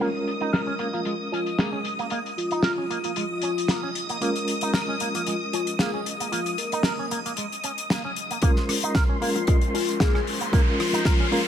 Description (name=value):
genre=nu-disco, nu disco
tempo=114 BPM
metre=4/4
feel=swing 54% on 16ths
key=Bb minor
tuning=A4 = 441 Hz
part: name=reed electric piano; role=accompaniment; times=0.0-11.5 s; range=Ab3 to Bb4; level=-30 LUFS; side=equal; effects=medium tremolo, sidechain pumping, low-pass filter, ping-pong delay
part: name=string machine, full ensemble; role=sustained chords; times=0.0-11.5 s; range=C6 to Eb6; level=-32 LUFS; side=equal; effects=phaser, ensemble chorus, sidechain pumping
part: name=electric guitar with an envelope filter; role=riff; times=0.0-11.4 s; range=Ab3 to Bb4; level=-31 LUFS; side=right 3 dB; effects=analog chorus, low-pass filter
part: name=damped 70s drum kit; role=drums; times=0.0-11.4 s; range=hi-hat, rim click, snare drum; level=-28 LUFS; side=left 1 dB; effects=low-pass filter on hats, low-pass filter on snare, low-pass filter on room
part: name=soft octave-layered synth lead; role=melody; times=0.9-11.4 s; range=F4 to Bb4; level=-30 LUFS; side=left 3 dB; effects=chorus, phaser, cassette tape, tape echo
part: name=electronic kick drum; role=drums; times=8.4-11.2 s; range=none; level=-20 LUFS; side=equal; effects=none
part: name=riser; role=sound effects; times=9.2-11.5 s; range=none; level=-32 LUFS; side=left 1 dB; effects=none
room=light reverb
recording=none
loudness=-22 LUFS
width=side -9 dB against mid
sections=0.0-8.4 A section; 8.4-11.5 B section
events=filter sweep on drum 0.0-8.4; build-up 8.4-11.5; filter sweep on reed electric piano 8.4-11.5; riser 9.2-11.5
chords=0.0 Bbm7; 8.2 Bbsus4; 8.4 Bbm7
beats=| 0.01 0.53 1.06 1.58 | 2.11 2.64 3.16 3.69 | 4.22 4.74 5.27 5.79 | 6.32 6.85 7.37 7.90 | 8.43 8.95 9.48 10.01 | 10.53 11.06